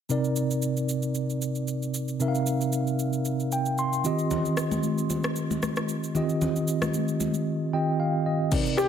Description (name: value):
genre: amapiano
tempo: 114 BPM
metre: 4/4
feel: swing 55% on 16ths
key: C minor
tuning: A4 = 443 Hz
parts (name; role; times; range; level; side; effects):
- mellow tine electric piano; accompaniment; 0.1-8.9 s; C3 to C6; -25 LUFS; right 1 dB; medium stereo tremolo
- deep house drum kit; drums; 0.1-8.9 s; crash cymbal, kick drum, rim click, shaker; -33 LUFS; equal; overdrive
- congas; percussion; 4.3-8.7 s; none; -31 LUFS; left 4 dB; none
- clear grand piano; melody; 8.8-8.9 s; G4; -21 LUFS; left 2 dB; none
room: light reverb, digital ambience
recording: none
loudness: -24 LUFS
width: side -8 dB against mid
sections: 0.1-8.5 A section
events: tine electric piano fill 3.3-4.3, 7.5-8.5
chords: 0.1 Cm7; 4.0 Eb69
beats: | 0.10 0.62 1.15 1.68 | 2.20 2.73 3.25 3.78 | 4.31 4.83 5.36 5.89 | 6.41 6.94 7.46 7.99 | 8.52